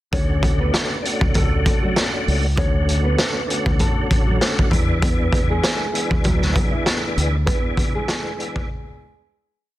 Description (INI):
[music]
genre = hip hop, boom-bap hip-hop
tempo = 98 BPM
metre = 4/4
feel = swing 57% on 16ths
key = D lydian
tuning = A4 = 441 Hz
[part]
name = nylon-string guitar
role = melody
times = 0.1-8.7 s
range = E3 to C#5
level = -28 LUFS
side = right 1 dB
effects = high-pass filter, low-pass filter
[part]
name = tonewheel organ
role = accompaniment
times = 0.1-8.7 s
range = D3 to G#4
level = -25 LUFS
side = equal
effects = chorus vibrato, fast rotary speaker, cassette tape, high-pass filter, low-pass filter
[part]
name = deep dub fingered electric bass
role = bass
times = 0.1-7.4 s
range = A1 to E2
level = -21 LUFS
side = equal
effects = none
[part]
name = raw garage drum kit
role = drums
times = 0.1-8.7 s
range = hi-hat, kick drum, snare drum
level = -20 LUFS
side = equal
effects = none
[sound]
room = small room ambience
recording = dense, heavily limited modern master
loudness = -17 LUFS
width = side -15 dB against mid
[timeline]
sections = 0.1-9.8 verse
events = break 7.5-9.8; fade-out 7.5-9.8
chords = 0.1 Dmaj7; 4.7 E7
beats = | 0.12 0.74 1.35 1.96 | 2.57 3.19 3.80 4.41 | 5.02 5.63 6.25 6.86 | 7.47 8.08 8.70